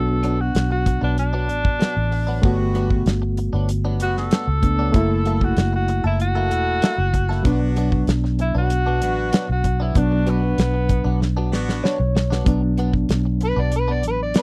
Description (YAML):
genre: straight-eighth soul blues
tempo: 96 BPM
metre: 4/4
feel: straight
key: B minor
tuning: A4 = 440 Hz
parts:
  - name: breathy tenor saxophone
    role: second line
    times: 0.0-11.5 s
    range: B3 to A4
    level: -27 LUFS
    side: equal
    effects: none
  - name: reed electric piano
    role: accompaniment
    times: 0.0-14.4 s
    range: F#3 to C#5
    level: -27 LUFS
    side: equal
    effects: fast tremolo
  - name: vintage muted fingered electric bass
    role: bass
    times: 0.0-14.3 s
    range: E1 to C#2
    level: -24 LUFS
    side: equal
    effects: none
  - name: direct-recorded clean electric guitar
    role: stabs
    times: 0.1-14.4 s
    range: G2 to A4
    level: -32 LUFS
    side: equal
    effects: analog chorus
  - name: damped 70s drum kit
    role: drums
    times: 0.2-14.4 s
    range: hi-hat, kick drum, snare drum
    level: -23 LUFS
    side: equal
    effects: none
  - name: warm horn section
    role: sustained chords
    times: 2.4-12.0 s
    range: G3 to A4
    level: -33 LUFS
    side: equal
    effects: none
  - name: overdriven harmonica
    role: melody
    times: 13.4-14.4 s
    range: B4 to D5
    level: -25 LUFS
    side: equal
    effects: none
room: little or no reverb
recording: dry, close 1970s-style studio recording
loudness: -20 LUFS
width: mono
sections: 0.0-12.5 A section; 12.5-14.4 A section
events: tenor saxophone solo 0.0-12.5; drum fill 11.2-12.5; reed electric piano fill 11.5-12.5; harmonica solo 12.5-14.4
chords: 0.0 Bm; 2.4 Gmaj7; 4.9 F#7#9; 7.5 Bm